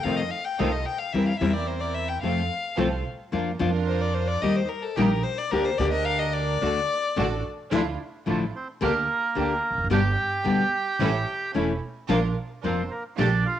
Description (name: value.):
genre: tango.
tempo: 110 BPM.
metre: 4/4.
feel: rubato.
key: D minor from 7.7 s.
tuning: A4 = 440 Hz.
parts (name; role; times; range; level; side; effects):
warm violin; second line; 0.0-7.4 s; G4 to G5; -28 LUFS; left 5 dB; cassette tape.
nylon-string guitar; accompaniment; 0.0-13.3 s; B2 to G4; -25 LUFS; left 4 dB; cassette tape.
clear chamber string section; stabs; 0.0-13.4 s; Bb3 to Bb4; -32 LUFS; right 8 dB; cassette tape.
upright bass; bass; 0.0-13.4 s; E1 to F2; -28 LUFS; right 3 dB; none.
bandoneon; melody; 8.3-13.6 s; A3 to G5; -26 LUFS; right 3 dB; cassette tape.
room: moderate spring reverb, RT60 1.4 s, small room ambience.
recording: home recording on cassette.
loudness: -23 LUFS.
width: side -11 dB against mid.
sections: 0.0-7.7 A section; 7.7-13.6 B section.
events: violin solo 0.0-7.7.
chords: 0.0 F7; 1.1 C7/E; 2.2 F; 3.3 Bb/F; 4.4 Eb; 5.5 Gm/D; 6.6 D; 7.7 Dmadd9; 8.8 Bb6/D; 9.9 G; 11.0 A; 12.1 Bb.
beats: 0.05 0.59 | 1.14 1.69 2.24 2.79 | 3.33 3.88 4.43 4.97 | 5.52 6.07 6.62 7.17 | 7.72 8.27 8.82 9.36 | 9.91 10.45 11.00 11.55 | 12.09 12.64 13.18.